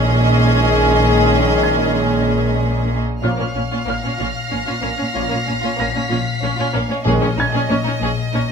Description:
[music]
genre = cinematic, suspense film score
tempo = 94 BPM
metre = 3/4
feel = straight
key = unclear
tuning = A4 = 444 Hz
[part]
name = warm chamber violin section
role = melody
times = 0.0-8.5 s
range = Eb5 to F5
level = -26 LUFS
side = right 1 dB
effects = none
[part]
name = warm studio violin section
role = second line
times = 0.0-8.5 s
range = Bb3 to Ab4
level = -24 LUFS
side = right 2 dB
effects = none
[part]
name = rich chamber viola section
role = accompaniment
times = 0.0-8.4 s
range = Db4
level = -24 LUFS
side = right 1 dB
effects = none
[part]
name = bright trombone section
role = sustained chords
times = 0.0-7.3 s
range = Eb3 to Bb3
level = -24 LUFS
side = right 1 dB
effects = none
[part]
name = mellow French horn section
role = sustained chords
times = 0.0-7.3 s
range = Db4 to Ab4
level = -22 LUFS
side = left 5 dB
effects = none
[part]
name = rich chamber cello section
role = bass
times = 0.0-8.5 s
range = Bb2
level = -22 LUFS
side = right 1 dB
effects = none
[part]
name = rich chamber double bass section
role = bass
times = 0.0-8.4 s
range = Bb1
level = -23 LUFS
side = right 1 dB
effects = none
[part]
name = timpani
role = percussion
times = 0.0-0.3, 7.1-8.0 s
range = Bb2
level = -25 LUFS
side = equal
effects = none
[part]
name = warm grand piano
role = texture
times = 0.0-8.5 s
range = Db5 to Bb6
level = -29 LUFS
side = right 2 dB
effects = none
[part]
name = marimba with soft mallets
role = riff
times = 0.1-8.5 s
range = Bb2 to Bb3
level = -25 LUFS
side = left 5 dB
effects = none
[part]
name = warm studio violin section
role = texture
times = 3.2-6.7 s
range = F6 to Bb6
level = -28 LUFS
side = left 1 dB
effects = none
[sound]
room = moderate stone room reverb, RT60 1.0 s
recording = none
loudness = -15 LUFS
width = side -6 dB against mid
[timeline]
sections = 0.0-8.5 A section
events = none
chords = 0.0 Absus4/Bb; 3.2 Bbm; 7.1 Absus4/Bb

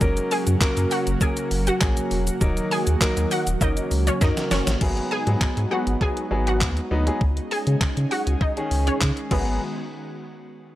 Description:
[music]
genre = dance-pop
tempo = 100 BPM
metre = 4/4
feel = straight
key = G# minor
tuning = A4 = 440 Hz
[part]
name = clear baby grand piano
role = accompaniment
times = 0.0-9.6 s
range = D#3 to A#4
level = -28 LUFS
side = left 1 dB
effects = sidechain pumping
[part]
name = airy breathy pad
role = sustained chords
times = 0.0-9.6 s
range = C#3 to G#4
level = -29 LUFS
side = right 1 dB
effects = chorus, sidechain pumping
[part]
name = warm sub bass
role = bass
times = 0.0-9.6 s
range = D#1 to C#3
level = -23 LUFS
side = equal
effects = sidechain pumping
[part]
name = gated 80s digital drum machine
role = drums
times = 0.0-9.5 s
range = crash cymbal, handclaps, hi-hat, kick drum, shaker, snare drum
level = -24 LUFS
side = equal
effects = gated reverb, gated reverb snare
[part]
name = wide unison pluck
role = melody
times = 0.3-9.6 s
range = B3 to G#5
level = -28 LUFS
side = equal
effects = ensemble chorus, tape echo
[sound]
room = little or no reverb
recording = dry, gritty hardware recording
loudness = -20 LUFS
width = side -14 dB against mid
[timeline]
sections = 0.0-4.8 A section; 4.8-9.6 B section; 9.6-10.8 C section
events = drop 0.0-4.8; drum fill 4.2-4.8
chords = 0.0 F#; 2.4 D#m; 3.6 F#; 4.8 G#m7; 7.2 C#sus2; 9.3 G#m7; 9.6 N.C.

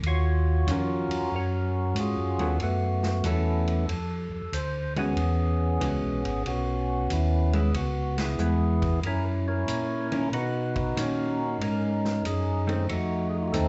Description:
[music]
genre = soul jazz organ trio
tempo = 93 BPM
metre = 4/4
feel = swing 68% on 8ths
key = Eb minor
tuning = A4 = 440 Hz
[part]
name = mellow tonewheel organ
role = bass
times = 0.0-13.7 s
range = G#1 to B2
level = -29 LUFS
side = equal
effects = slow rotary speaker
[part]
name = vintage drum kit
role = drums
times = 0.0-13.7 s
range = hi-hat, kick drum, ride cymbal, snare drum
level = -41 LUFS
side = equal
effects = none
[part]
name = percussive tonewheel organ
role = melody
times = 0.1-13.7 s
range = A3 to Db5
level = -32 LUFS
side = equal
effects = overdrive, slow rotary speaker, slapback echo
[part]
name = hollow-body jazz guitar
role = accompaniment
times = 0.7-13.7 s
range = Eb3 to A4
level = -34 LUFS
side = equal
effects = none
[sound]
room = light reverb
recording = live gig heard through the venue's PA, club ambience, nothing above 7.9 kHz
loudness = -27 LUFS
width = mono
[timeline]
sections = 0.0-13.7 A section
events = band accent 8.1-8.4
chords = 0.0 Ebm9; 2.6 Gbm7; 3.9 F; 5.2 E69; 7.7 Dbm7; 9.0 Gb6; 10.3 Bmaj9; 12.9 F7

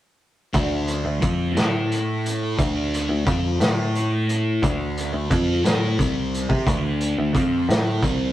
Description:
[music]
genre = psychedelic rock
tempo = 59 BPM (dotted quarters)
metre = 6/8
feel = straight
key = unclear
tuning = A4 = 440 Hz
[part]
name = thick fuzz guitar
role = riff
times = 0.5-8.3 s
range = C3 to A4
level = -24 LUFS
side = equal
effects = distortion, phaser
[part]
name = picked electric bass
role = bass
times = 0.5-8.3 s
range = C2 to C3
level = -25 LUFS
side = equal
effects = none
[part]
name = vintage drum kit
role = drums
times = 0.5-8.2 s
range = hi-hat, kick drum, snare drum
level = -23 LUFS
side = equal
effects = none
[sound]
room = moderate studio reverb, RT60 0.5 s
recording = rough rehearsal-room recording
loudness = -20 LUFS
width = side -14 dB against mid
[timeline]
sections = 0.6-8.3 A section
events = none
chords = 0.6 D5; 1.6 A5; 2.6 D5; 3.6 A5; 4.6 D5

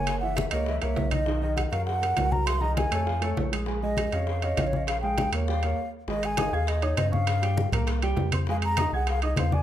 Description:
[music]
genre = Afro-Cuban jazz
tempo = 200 BPM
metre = 4/4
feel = straight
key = Bb minor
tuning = A4 = 439 Hz
[part]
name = mellow hollow concert flute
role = melody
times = 0.0-9.6 s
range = Db5 to C6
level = -30 LUFS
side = left 1 dB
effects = none
[part]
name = warm baby grand piano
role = accompaniment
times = 0.0-9.6 s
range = Eb3 to Ab6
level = -32 LUFS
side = right 3 dB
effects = none
[part]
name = warm sub bass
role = bass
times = 0.0-9.6 s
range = Gb1 to G2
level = -28 LUFS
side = equal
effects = none
[part]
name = bongos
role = percussion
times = 0.1-9.6 s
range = none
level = -37 LUFS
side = left 4 dB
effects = none
[part]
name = congas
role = percussion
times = 0.1-9.6 s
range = none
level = -32 LUFS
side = left 2 dB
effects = none
[part]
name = timbales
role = percussion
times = 0.1-9.5 s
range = none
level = -34 LUFS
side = right 6 dB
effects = none
[sound]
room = light reverb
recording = minimal, uncompressed stereo recording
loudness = -24 LUFS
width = side -11 dB against mid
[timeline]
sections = 0.0-6.1 A section; 6.1-9.6 B section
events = stop 5.8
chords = 0.1 Gb7; 1.3 Bmaj7; 2.5 Cm7b5; 3.1 Faug; 3.7 Bbm7; 5.5 Eb9; 6.1 Ab; 7.3 Gm7b5; 7.9 C5; 8.5 Fm7

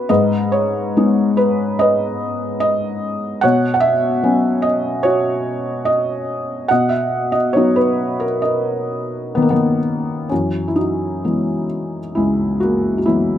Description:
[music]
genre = classical, lyrical solo piano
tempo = 63-77 BPM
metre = 4/4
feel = rubato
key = B major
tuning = A4 = 439 Hz
[part]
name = felt-muted upright piano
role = solo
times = 0.0-13.4 s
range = C#2 to F#5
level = -15 LUFS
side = equal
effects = none
[sound]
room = light reverb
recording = close, detailed microphones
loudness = -15 LUFS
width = side -10 dB against mid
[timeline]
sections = 0.0-10.3 A section; 10.3-13.4 B section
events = none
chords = 0.1 G#m; 3.4 Bsus2; 6.7 Bmaj7; 10.3 F#9sus4

